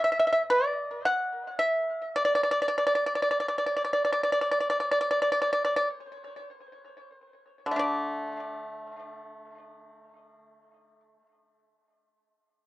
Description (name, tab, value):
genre	chinese traditional, Chinese solo plucked strings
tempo	36-59 BPM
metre	4/4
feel	rubato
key	D gong mode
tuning	A4 = 436 Hz
part	pipa	solo	0.0-11.3 s	A2 to F#5	-25 LUFS	equal	cassette tape, tape echo
room	light reverb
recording	home recording on cassette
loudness	-24 LUFS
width	side -17 dB against mid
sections	0.0-7.8 A section; 7.8-12.7 B section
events	slowing down 0.0-7.8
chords	none